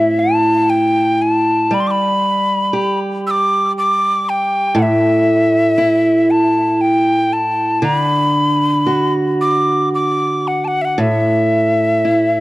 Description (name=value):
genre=celtic folk, Celtic slow air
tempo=58 BPM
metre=3/4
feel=rubato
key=A dorian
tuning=A4 = 442 Hz
part: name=breathy mid whistle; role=melody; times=0.0-12.4 s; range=E5 to E6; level=-16 LUFS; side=left 1 dB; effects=tape echo
part: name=picked steel-string acoustic guitar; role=accompaniment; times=0.0-12.4 s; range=A2 to C5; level=-16 LUFS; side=right 1 dB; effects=none
room=little or no reverb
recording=dry, close 1970s-style studio recording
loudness=-13 LUFS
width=side -18 dB against mid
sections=0.0-12.4 A section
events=none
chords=0.0 A5; 1.7 N.C.; 4.8 A5; 7.8 D; 11.0 A5